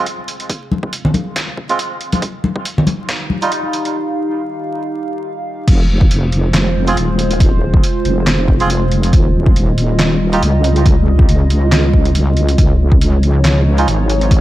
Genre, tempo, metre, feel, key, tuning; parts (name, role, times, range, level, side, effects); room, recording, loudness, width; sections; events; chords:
deep dubstep; 139 BPM; 4/4; swing 55% on 16ths, half-time; F minor; A4 = 441 Hz
dark analog pad; sustained chords; 1.1-14.4 s; F3 to F5; -21 LUFS; right 1 dB; chorus, phaser
melodica; stabs; 0.0-3.5, 6.9-10.4, 13.8-13.9 s; G3 to Ab4; -22 LUFS; right 3 dB; low-pass filter, dub echo
trip hop sampler-style drum kit; drums; 0.1-14.4 s; crash cymbal, handclaps, hi-hat, snare drum; -20 LUFS; equal; high-pass filter on hats, high-pass filter on toms, high-pass filter on snare, high-pass filter on cymbals
electronic kick drum; drums; 0.5-2.6, 5.7-14.4 s; -12 LUFS; equal; overdrive, high-pass filter on kick
congas; percussion; 0.7-3.4 s; -17 LUFS; left 1 dB
wobble bass; bass; 5.7-14.4 s; Eb1 to Db2; -14 LUFS; equal; chorus, tube saturation
light reverb; dark, warm production, vinyl crackle; -12 LUFS; side -15 dB against mid
0.0-5.7 A section; 5.7-14.4 B section
build-up 0.0-5.7; filter sweep on analog synth pad 0.0-5.7; break 4.0-5.7; drop 5.7-14.4
0.0 Fm; 2.2 Ebadd9; 5.7 Fm; 9.1 Ebadd9; 12.6 Dbadd9